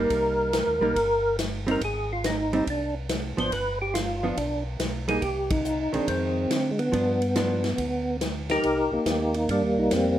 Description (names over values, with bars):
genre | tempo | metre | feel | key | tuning
soul jazz organ trio | 141 BPM | 4/4 | swing 67% on 8ths | C minor | A4 = 441 Hz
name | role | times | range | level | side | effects
percussive tonewheel organ | melody | 0.0-10.2 s | G3 to C5 | -24 LUFS | equal | slow rotary speaker, chorus vibrato
archtop guitar, miked and amplified | accompaniment | 0.0-7.6 s | Eb3 to Eb4 | -29 LUFS | right 2 dB | none
mellow tonewheel organ | bass | 0.0-10.2 s | G1 to D3 | -32 LUFS | equal | slow rotary speaker
swinging big-band drum kit | drums | 0.1-10.0 s | hi-hat, kick drum, ride cymbal, snare drum | -32 LUFS | equal | none
room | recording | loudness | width
light reverb | none | -23 LUFS | side -12 dB against mid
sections
0.0-8.6 A section; 8.6-10.2 A section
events
band accent 5.4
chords
0.0 Cm7; 1.8 Ab; 3.5 G7; 5.2 Cm; 6.1 Fm7; 6.9 G7; 8.6 Cm7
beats
| 0.10 0.53 0.96 1.38 | 1.81 2.24 2.66 3.09 | 3.52 3.94 4.37 4.79 | 5.22 5.65 6.07 6.50 | 6.93 7.35 7.78 8.21 | 8.63 9.06 9.48 9.91